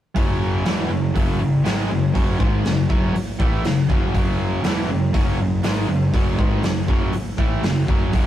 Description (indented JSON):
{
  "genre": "hard rock",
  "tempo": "120 BPM",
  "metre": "4/4",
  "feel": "straight",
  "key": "F# minor",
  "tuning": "A4 = 440 Hz",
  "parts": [
    { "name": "overdriven electric guitar", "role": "riff", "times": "0.1-8.3 s", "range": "E2 to A3", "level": "-24 LUFS", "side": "right 1 dB", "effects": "none" },
    { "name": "distorted electric guitar", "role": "riff", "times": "0.2-8.3 s", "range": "E2 to A3", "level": "-27 LUFS", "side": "left 4 dB", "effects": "overdrive" },
    { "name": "fuzz picked electric bass", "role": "bass", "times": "0.2-8.3 s", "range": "E1 to A1", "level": "-24 LUFS", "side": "equal", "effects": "overdrive" },
    { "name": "raw garage drum kit", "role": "drums", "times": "0.2-8.3 s", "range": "hi-hat, kick drum, snare drum", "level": "-21 LUFS", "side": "equal", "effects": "none" }
  ],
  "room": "moderate stone room reverb, RT60 1.0 s",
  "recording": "rough rehearsal-room recording, warm saturation",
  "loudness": "-18 LUFS",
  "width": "side -12 dB against mid",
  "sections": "0.2-8.3 A section",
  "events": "none",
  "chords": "0.2 F#m"
}